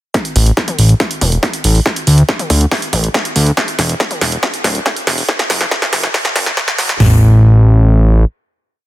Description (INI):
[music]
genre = uplifting trance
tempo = 140 BPM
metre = 4/4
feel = straight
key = unclear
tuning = A4 = 440 Hz
[part]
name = big-room dance drum kit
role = drums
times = 0.1-7.1 s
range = hi-hat, kick drum, snare drum, toms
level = -18 LUFS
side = equal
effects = overdrive, high-pass filter on kick, high-pass filter on snare, high-pass filter on toms, high-pass filter on hats
[part]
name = punchy analog drum machine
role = drums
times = 0.1-7.0 s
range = hi-hat, snare drum, toms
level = -16 LUFS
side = right 1 dB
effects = high-pass filter on snare, high-pass filter on hats, high-pass filter on toms
[part]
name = fat analog bass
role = bass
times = 0.4-8.2 s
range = D1 to D2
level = -9 LUFS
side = equal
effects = sidechain pumping
[sound]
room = digital ambience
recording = dense, heavily limited modern master, high-pass filter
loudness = -10 LUFS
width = side -16 dB against mid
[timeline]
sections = 0.1-7.0 build; 7.0-8.9 final note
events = build-up 0.1-7.0; drum fill 0.1-7.0; filter sweep 0.1-7.0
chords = none